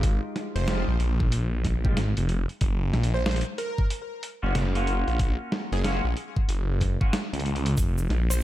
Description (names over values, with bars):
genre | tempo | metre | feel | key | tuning
glitch hop | 93 BPM | 4/4 | swing 63% on 16ths | unclear | A4 = 440 Hz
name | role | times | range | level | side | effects
clean electric guitar | stabs | 0.0-7.1 s | Ab3 to G4 | -34 LUFS | left 1 dB | analog chorus, sidechain pumping, ping-pong delay
phased detuned saw bass | bass | 0.0-8.4 s | F1 to Db2 | -25 LUFS | equal | phaser
boom bap sampler-style drum kit | drums | 0.0-8.4 s | hi-hat, snare drum | -32 LUFS | equal | none
electronic kick drum | drums | 0.0-7.9 s | none | -25 LUFS | equal | none
plucky unison lead | melody | 0.6-8.4 s | Ab4 to C5 | -35 LUFS | right 2 dB | analog chorus, ping-pong delay
tube shaker | percussion | 7.8-8.4 s | none | -34 LUFS | right 2 dB | none
room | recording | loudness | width
light reverb | none | -24 LUFS | side -14 dB against mid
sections
0.0-8.4 A section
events
drum fill 7.5-7.8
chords
0.0 Fm9; 2.6 Gbmaj7; 7.8 N.C.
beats
| 0.03 0.68 1.32 1.97 | 2.61 3.26 3.90 4.55 | 5.19 5.84 6.49 7.13 | 7.78 8.42